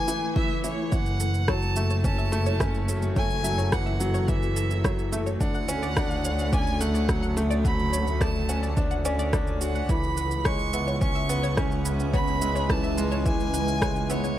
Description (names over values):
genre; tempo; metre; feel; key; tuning
piano and strings electronica; 107 BPM; 4/4; straight; F# minor; A4 = 440 Hz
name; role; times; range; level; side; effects
clear violin; melody; 0.0-14.4 s; C#5 to C#6; -32 LUFS; right 2 dB; none
granular cloud pad; sustained chords; 0.0-14.4 s; D3 to D6; -35 LUFS; equal; built-in reverb, sidechain pumping
bright upright piano; riff; 0.0-14.4 s; E3 to D4; -30 LUFS; left 1 dB; ping-pong delay
analog pluck; arpeggios; 0.1-14.4 s; E4 to F#5; -37 LUFS; left 2 dB; chorus, phaser, sidechain pumping, ping-pong delay
electronic shaker and rim click; drums; 0.1-14.4 s; none; -32 LUFS; right 1 dB; overdrive
electronic kick drum; drums; 0.4-13.9 s; none; -28 LUFS; equal; overdrive
clear studio double bass section; bass; 0.9-14.3 s; F#1 to D2; -28 LUFS; equal; tube saturation, sidechain pumping
room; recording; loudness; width
light reverb; none; -23 LUFS; side -12 dB against mid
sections
0.9-14.4 A section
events
drop 0.9-14.4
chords
0.0 A5; 0.9 F#m7; 5.4 Dmaj7; 9.9 C#m7